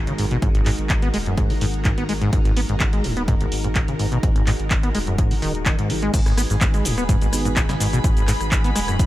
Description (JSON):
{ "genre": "acid house", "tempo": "126 BPM", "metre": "4/4", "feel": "straight", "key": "G# minor", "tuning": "A4 = 438 Hz", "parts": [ { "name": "string machine, full ensemble", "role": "sustained chords", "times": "0.0-9.1 s", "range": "G#3 to B4", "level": "-30 LUFS", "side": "equal", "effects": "ensemble chorus, sidechain pumping" }, { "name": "saturated sub bass", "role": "bass", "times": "0.0-9.1 s", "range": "D#1 to G#1", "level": "-26 LUFS", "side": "equal", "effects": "sidechain pumping" }, { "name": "acid bass, saw", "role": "riff", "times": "0.1-9.1 s", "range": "G#1 to B3", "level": "-24 LUFS", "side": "equal", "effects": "tube saturation, wide subtle chorus, tape echo" }, { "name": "punchy analog drum machine", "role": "drums", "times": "0.1-9.1 s", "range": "cabasa, crash cymbal, handclaps, hi-hat, rim click, snare drum", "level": "-27 LUFS", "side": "equal", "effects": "none" }, { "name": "electronic kick drum", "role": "drums", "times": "0.4-9.1 s", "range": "none", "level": "-20 LUFS", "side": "equal", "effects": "none" }, { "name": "dark studio string section", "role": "texture", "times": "6.1-9.1 s", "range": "G#4 to B5", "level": "-30 LUFS", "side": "right 1 dB", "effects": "sidechain pumping" }, { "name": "mellow tine electric piano", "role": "stabs", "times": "7.3-7.5 s", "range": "B3 to G#4", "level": "-29 LUFS", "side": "right 3 dB", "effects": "phaser, tape echo" } ], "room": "little or no reverb", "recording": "none", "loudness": "-18 LUFS", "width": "side -15 dB against mid", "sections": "0.0-6.1 A section; 6.1-9.1 B section", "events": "drop 6.1-9.1", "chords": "0.0 G#7(no3); 6.1 G#m7" }